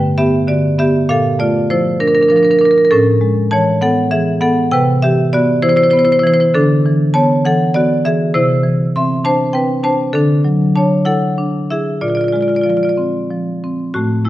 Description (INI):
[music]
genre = classical, contemporary piece for solo marimba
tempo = 66 BPM (dotted quarters)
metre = 6/8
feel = rubato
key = unclear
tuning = A4 = 440 Hz
[part]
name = marimba with medium hard mallets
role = solo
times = 0.0-14.3 s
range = G2 to C6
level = -12 LUFS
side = equal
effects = none
[sound]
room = moderate recital hall reverb, RT60 1.5 s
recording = worn, warbling old tape, cassette tape, warbly pitch drift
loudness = -12 LUFS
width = side -15 dB against mid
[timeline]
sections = 0.0-13.9 A section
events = none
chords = 0.0 Gmaj7; 1.1 Bbmaj7; 2.9 Amaj9; 4.7 Cmaj7; 6.5 D69; 8.3 Cadd9; 10.1 Dadd9; 12.0 Bb9